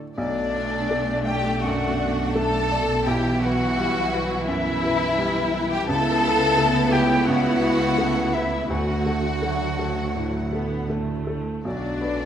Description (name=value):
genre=cinematic, emotional film score for orchestra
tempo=84 BPM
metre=4/4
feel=rubato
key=B minor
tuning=A4 = 442 Hz
part: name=felt-muted upright piano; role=accompaniment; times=0.0-12.3 s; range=B1 to D5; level=-29 LUFS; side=equal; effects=none
part: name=warm studio violin section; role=melody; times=0.2-12.3 s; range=D5 to A5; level=-34 LUFS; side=left 4 dB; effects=none
part: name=concert flute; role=second line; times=0.2-12.3 s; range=D5 to A5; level=-28 LUFS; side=left 1 dB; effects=none
part: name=warm studio violin section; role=second line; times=0.2-12.3 s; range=D4 to A4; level=-27 LUFS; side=left 3 dB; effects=none
part: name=rich studio viola section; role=accompaniment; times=0.2-12.3 s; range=E3 to F#4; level=-29 LUFS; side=right 2 dB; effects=none
part: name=dark French horn section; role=sustained chords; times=0.2-12.3 s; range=E3 to A4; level=-29 LUFS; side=left 2 dB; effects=none
part: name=dark studio cello section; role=bass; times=0.2-12.3 s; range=B2 to D3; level=-30 LUFS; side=right 3 dB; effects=none
part: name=warm studio double bass section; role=bass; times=0.2-12.3 s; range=B1 to D2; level=-30 LUFS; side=right 2 dB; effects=none
room=wet scoring stage reverb, RT60 1.8 s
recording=none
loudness=-20 LUFS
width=side -9 dB against mid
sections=0.2-12.3 A section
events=none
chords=0.2 Bm7; 3.1 Emadd9/B; 5.9 Aadd9/C#; 8.7 D; 11.6 Bm7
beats=| 0.17 0.90 1.62 2.34 | 3.05 3.77 4.47 5.17 | 5.88 6.58 7.28 7.97 | 8.69 9.43 10.16 10.90 | 11.65